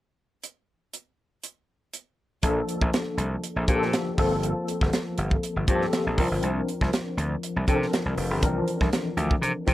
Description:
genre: polished 1980s jazz-funk pop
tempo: 120 BPM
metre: 4/4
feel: swing 54% on 16ths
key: unclear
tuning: A4 = 440 Hz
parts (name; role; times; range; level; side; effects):
- tight funk drum kit; drums; 0.4-9.7 s; hi-hat, kick drum, snare drum; -26 LUFS; equal; none
- tine electric piano; accompaniment; 2.4-9.7 s; E3 to Bb4; -27 LUFS; left 2 dB; overdrive, medium tremolo, ensemble chorus
- gritty slap bass; bass; 2.4-9.7 s; F1 to C3; -27 LUFS; equal; overdrive
room: little or no reverb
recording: none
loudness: -23 LUFS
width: side -15 dB against mid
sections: 0.4-2.4 A section; 2.4-9.7 B section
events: none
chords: 0.4 N.C.; 2.4 Bbmaj7; 4.2 Gm11; 6.2 C9sus4

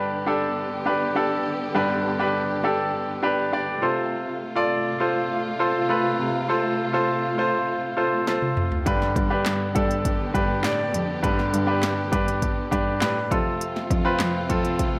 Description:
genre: piano-driven pop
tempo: 101 BPM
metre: 4/4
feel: straight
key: G mixolydian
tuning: A4 = 441 Hz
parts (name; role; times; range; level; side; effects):
- bright concert grand piano; accompaniment; 0.0-15.0 s; G2 to D5; -25 LUFS; equal; none
- warm studio string section; sustained chords; 0.0-15.0 s; C3 to G4; -33 LUFS; equal; none
- deep house drum kit; drums; 8.3-14.9 s; handclaps, hi-hat, kick drum, snare drum, toms; -29 LUFS; equal; none
- rich cello; bass; 8.9-14.9 s; F2 to A2; -30 LUFS; equal; none
room: light reverb, small room reverb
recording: none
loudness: -24 LUFS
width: mono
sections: 0.0-15.0 A section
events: drum fill 8.3-8.9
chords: 0.0 G; 3.8 F; 8.9 G; 13.3 F

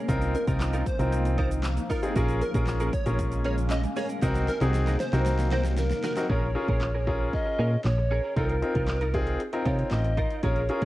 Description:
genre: dance-pop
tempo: 116 BPM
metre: 4/4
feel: straight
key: Bb minor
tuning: A4 = 441 Hz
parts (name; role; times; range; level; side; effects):
- granular cloud pad; sustained chords; 0.0-6.3 s; C3 to Eb4; -36 LUFS; equal; built-in reverb, sidechain pumping, cassette tape
- direct-recorded clean electric guitar; riff; 0.0-10.8 s; Db4 to Bb4; -36 LUFS; right 4 dB; ensemble chorus, cassette tape
- clear grand piano; accompaniment; 0.1-10.8 s; C4 to Bb4; -30 LUFS; left 2 dB; sidechain pumping, cassette tape
- solid FM bass; bass; 0.1-10.8 s; A1 to C3; -26 LUFS; equal; sidechain pumping
- pop drum kit; drums; 0.1-10.8 s; handclaps, hi-hat, kick drum, snare drum; -31 LUFS; equal; cassette tape
- tube shaker; percussion; 0.1-6.3 s; none; -52 LUFS; right 7 dB; none
- plucky unison lead; melody; 0.4-6.1 s; Bb4 to Eb5; -34 LUFS; equal; sidechain pumping, cassette tape, tape echo
- polished pan flute; melody; 5.8-10.8 s; Bb4 to Eb5; -32 LUFS; equal; cassette tape, tape echo
room: digital ambience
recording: home recording on cassette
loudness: -24 LUFS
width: side -16 dB against mid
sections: 0.0-6.3 A section; 6.3-10.8 B section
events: drum fill 4.2-6.3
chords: 0.1 F7sus4/C; 2.2 Bbm7; 4.2 Cm7b5; 6.3 Bbm7; 8.4 F7sus4/C

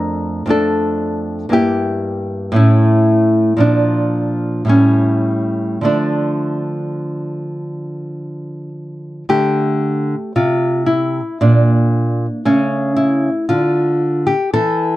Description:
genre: classical, baroque-style dance for nylon-string guitar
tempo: 50-59 BPM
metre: 3/4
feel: rubato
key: D minor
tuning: A4 = 441 Hz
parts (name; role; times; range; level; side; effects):
- nylon-string guitar; solo; 0.0-15.0 s; F2 to Bb4; -14 LUFS; equal; none
room: little or no reverb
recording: close, detailed microphones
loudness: -13 LUFS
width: side -16 dB against mid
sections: 0.0-9.3 A section; 9.3-15.0 B section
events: none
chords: 0.0 Dm/F; 1.6 Edim/G; 2.6 A; 3.6 Bb; 4.7 A7; 5.8 Dm; 9.3 D5; 11.4 N.C.; 12.5 A/C#

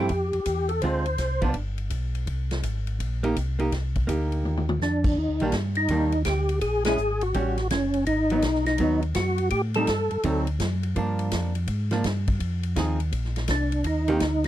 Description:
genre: soul jazz organ trio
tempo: 166 BPM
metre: 4/4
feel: swing 65% on 8ths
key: C minor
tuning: A4 = 440 Hz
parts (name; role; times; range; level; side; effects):
- percussive tonewheel organ; melody; 0.0-1.5, 4.8-10.4, 13.5-14.4 s; C#4 to C5; -25 LUFS; equal; slow rotary speaker, chorus vibrato
- archtop guitar, miked and amplified; accompaniment; 0.0-14.2 s; D3 to Ab4; -27 LUFS; right 2 dB; none
- mellow tonewheel organ; bass; 0.0-14.5 s; F#1 to A2; -27 LUFS; equal; slow rotary speaker
- swinging big-band drum kit; drums; 0.1-14.5 s; crash cymbal, hi-hat, kick drum, ride cymbal, snare drum, toms; -31 LUFS; equal; none
room: little or no reverb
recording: dry, close 1970s-style studio recording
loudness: -23 LUFS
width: side -13 dB against mid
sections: 0.0-5.2 A section; 5.2-14.5 B section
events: drum fill 4.4-4.8; band accent 6.8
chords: 0.0 Fmaj7; 0.8 Dm7b5; 1.6 G; 2.3 Cm7; 5.2 Ebmaj7; 6.6 Bbm7b5; 7.3 A6; 8.1 Abm7; 9.5 Am7b5; 10.2 D7b9; 11.0 Gm7; 12.4 Fm7; 13.1 Bbadd9; 13.8 Eb6

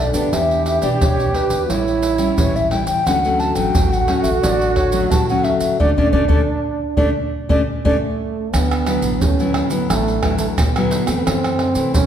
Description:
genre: samba and choro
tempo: 88 BPM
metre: 4/4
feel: straight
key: D major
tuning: A4 = 439 Hz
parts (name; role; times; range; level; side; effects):
- baroque flute; melody; 0.0-8.0 s; B4 to A5; -21 LUFS; equal; none
- breathy trombone; second line; 0.0-12.1 s; A3 to G4; -21 LUFS; right 4 dB; none
- nylon-string guitar; accompaniment; 0.0-12.1 s; F#2 to G4; -22 LUFS; left 4 dB; none
- upright bass; bass; 0.0-12.1 s; A1 to D3; -24 LUFS; equal; none
- maracas, pandeiro, surdo and tamborim; percussion; 0.1-12.1 s; none; -21 LUFS; right 1 dB; none
room: wet recital hall reverb, RT60 1.5 s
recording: recorded in a church or concert hall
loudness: -15 LUFS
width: side -9 dB against mid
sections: 0.0-8.5 A section; 8.5-12.1 B section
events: band accent 5.8-8.5; trombone solo 8.5-12.1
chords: 0.3 Em7; 1.7 A7; 3.1 Dmaj7; 8.5 D69; 11.3 F#m7b5

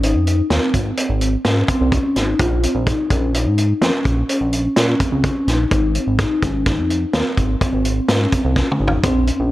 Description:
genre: progressive instrumental, band music in an uneven meter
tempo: 126 BPM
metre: 7/4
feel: straight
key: unclear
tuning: A4 = 439 Hz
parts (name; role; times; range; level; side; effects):
- vibraphone with soft mallets; arpeggios; 0.0-9.5 s; C4 to F4; -20 LUFS; left 1 dB; digital delay
- chorused synth bass; bass; 0.0-9.5 s; Ab1 to Bb2; -19 LUFS; equal; none
- vintage drum kit; drums; 0.0-9.4 s; hi-hat, kick drum, snare drum, toms; -20 LUFS; equal; none
room: light reverb, small room ambience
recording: none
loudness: -15 LUFS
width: side -16 dB against mid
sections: 0.0-9.0 A section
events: drum fill 8.6-9.0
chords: 0.0 Ab; 2.4 Bbm; 5.7 Ab

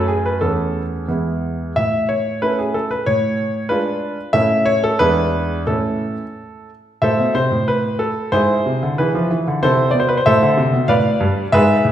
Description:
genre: classical-period piano sonatina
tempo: 92 BPM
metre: 2/4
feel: rubato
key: A major, A minor from 7.0 s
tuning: A4 = 439 Hz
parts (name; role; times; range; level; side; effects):
- clear concert grand piano; solo; 0.0-11.9 s; E2 to F5; -15 LUFS; equal; none
room: wet recital hall reverb, RT60 1.5 s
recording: heard from further back in the room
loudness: -15 LUFS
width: side -11 dB against mid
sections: 0.0-7.0 A section; 7.0-11.9 B section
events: none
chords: 0.4 A/E; 1.1 E; 1.8 A; 3.1 G#dim7/A; 4.3 A; 5.0 E7; 5.7 A; 7.0 Am; 8.3 E7/G#; 9.6 Am; 10.9 Bm7b5/A

